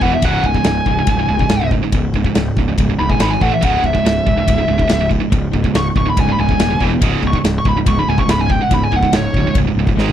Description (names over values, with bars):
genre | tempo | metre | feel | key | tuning
heavy metal | 142 BPM | 4/4 | straight | C# minor | A4 = 440 Hz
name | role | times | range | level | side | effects
bluesy overdriven lead guitar | melody | 0.0-9.6 s | C#5 to C#6 | -18 LUFS | equal | distortion, slapback echo
distorted electric guitar | riff | 0.0-10.1 s | C#2 to A3 | -23 LUFS | left 8 dB | distortion
tight distorted guitar | riff | 0.0-10.1 s | C#2 to A3 | -20 LUFS | right 11 dB | distortion
fuzz picked electric bass | bass | 0.0-10.1 s | C#1 to A1 | -19 LUFS | equal | overdrive
big rock drum kit | drums | 0.0-10.1 s | kick drum, ride cymbal, snare drum, toms | -18 LUFS | equal | none
room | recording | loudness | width
little or no reverb | dry, close 1970s-style studio recording | -13 LUFS | side -10 dB against mid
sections
0.0-10.1 A section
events
lead electric guitar solo 0.0-10.1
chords
0.0 E5; 0.2 C#5; 3.2 G#5; 3.4 A5; 3.6 C#m; 6.8 E5; 7.0 C#5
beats
| 0.23 0.66 1.08 1.51 | 1.93 2.36 2.78 3.21 | 3.63 4.05 4.48 4.90 | 5.33 5.75 6.17 6.60 | 7.02 7.44 7.87 8.29 | 8.71 9.13 9.56 9.98